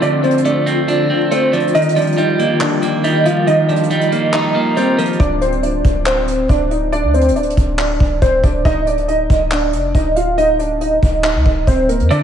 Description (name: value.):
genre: hip hop, trap.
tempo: 139 BPM.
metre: 4/4.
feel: half-time.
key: unclear.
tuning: A4 = 440 Hz.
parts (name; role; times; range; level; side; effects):
dark concert grand piano; melody; 0.0-12.2 s; Bb3 to F5; -16 LUFS; right 1 dB; analog chorus, low-pass filter, analog delay.
electric guitar at the edge of break-up; accompaniment; 0.0-5.2, 12.1-12.2 s; D3 to Eb4; -17 LUFS; right 2 dB; low-pass filter.
glassy FM pad; sustained chords; 0.0-5.2 s; D3 to F4; -22 LUFS; left 1 dB; ensemble chorus, built-in reverb.
soft brush drum kit; drums; 0.0-12.2 s; handclaps, hi-hat, kick drum; -21 LUFS; equal; none.
warm 808-style bass; bass; 5.2-12.1 s; D1 to F2; -18 LUFS; equal; none.
room: wet plate reverb, RT60 1.8 s.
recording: dreamy mix soaked in reverb, vinyl crackle, nothing above 11.0 kHz.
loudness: -13 LUFS.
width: side -9 dB against mid.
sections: 0.0-5.2 A section; 5.2-12.2 B section.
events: none.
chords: 0.0 Dm7; 1.7 Ebadd9; 5.2 Csus2/D; 8.7 N.C..